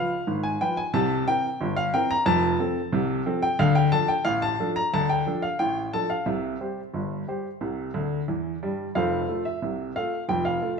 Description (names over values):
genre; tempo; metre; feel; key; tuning
ragtime piano; 90 BPM; 2/4; straight; F major; A4 = 440 Hz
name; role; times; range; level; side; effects
warm upright piano; solo; 0.0-10.8 s; F1 to Bb5; -23 LUFS; equal; none
room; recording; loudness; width
wet large studio reverb, RT60 1.2 s; band playing live in one room; -23 LUFS; side -5 dB against mid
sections
0.0-9.0 A section; 9.0-10.8 B section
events
upright piano fill 7.9-9.0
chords
0.0 Db7 (rootless); 0.9 C7; 2.3 F; 3.6 Dm; 6.3 C; 9.0 F